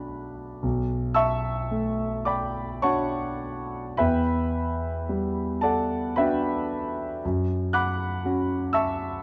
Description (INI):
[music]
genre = classical, impressionist solo piano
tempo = 45-60 BPM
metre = 3/4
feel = rubato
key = B minor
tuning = A4 = 439 Hz
[part]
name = clear concert grand piano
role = solo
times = 0.0-9.2 s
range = B1 to F#6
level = -27 LUFS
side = equal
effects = none
[sound]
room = light reverb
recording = close, detailed microphones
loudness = -26 LUFS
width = mono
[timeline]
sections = 0.6-9.2 A section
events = none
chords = 0.0 Bm7; 4.0 Em9; 7.2 F#7sus4